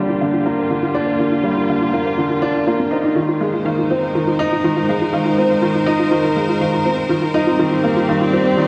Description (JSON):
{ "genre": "piano and strings electronica", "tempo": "122 BPM", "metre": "4/4", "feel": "straight", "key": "unclear", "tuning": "A4 = 435 Hz", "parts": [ { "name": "rich symphonic string section", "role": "sustained chords", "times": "0.0-8.7 s", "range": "G3 to Eb5", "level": "-23 LUFS", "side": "equal", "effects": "low-pass filter" }, { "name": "warbly dusty pluck", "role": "arpeggios", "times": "0.0-8.7 s", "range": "C4 to F5", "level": "-24 LUFS", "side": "equal", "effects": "chorus, tape echo" }, { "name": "warm upright piano", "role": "riff", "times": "0.0-8.7 s", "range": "D3 to Eb4", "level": "-20 LUFS", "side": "equal", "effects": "tape echo" } ], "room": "wet echo chamber reverb, RT60 1.6 s, small room ambience", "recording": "dark, warm production", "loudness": "-17 LUFS", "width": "mono", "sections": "0.0-8.7 A section", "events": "build-up 0.0-8.7", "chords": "0.0 Ebmaj7 (rootless); 3.2 Abmaj7; 7.1 Cm7" }